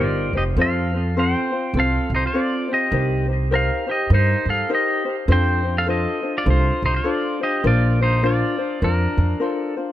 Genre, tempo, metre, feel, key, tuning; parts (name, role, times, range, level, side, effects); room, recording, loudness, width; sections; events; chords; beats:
Hawaiian; 102 BPM; 4/4; swing 61% on 8ths; A4 = 440 Hz
pedal steel guitar; melody; 0.0-9.7 s; D4 to G5; -23 LUFS; equal; digital delay
ukulele; accompaniment; 0.0-9.9 s; C4 to C5; -24 LUFS; left 3 dB
upright bass; bass; 0.0-9.3 s; F1 to G2; -20 LUFS; right 1 dB
light reverb; -18 LUFS; side -13 dB against mid
0.0-9.9 A section
0.0 Cm7; 0.6 F; 2.9 Cm7; 5.3 F6; 7.6 Bbadd9
| 0.56 1.15 1.74 2.33 | 2.92 3.51 4.10 4.69 | 5.28 5.87 6.46 7.05 | 7.64 8.23 8.82 9.41